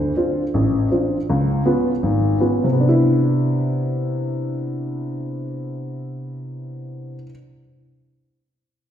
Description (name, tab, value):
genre	solo jazz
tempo	162 BPM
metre	4/4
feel	swing 64% on 8ths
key	C major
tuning	A4 = 440 Hz
part	dark upright piano	solo	0.0-7.3 s	Ab1 to F4	-19 LUFS	equal	none
room	wet recital hall reverb, RT60 1.7 s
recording	recorded in a church or concert hall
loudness	-18 LUFS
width	side -10 dB against mid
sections	0.0-2.8 A section; 2.8-5.7 B section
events	none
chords	0.0 Dm7; 1.3 Db7; 2.8 Cmaj9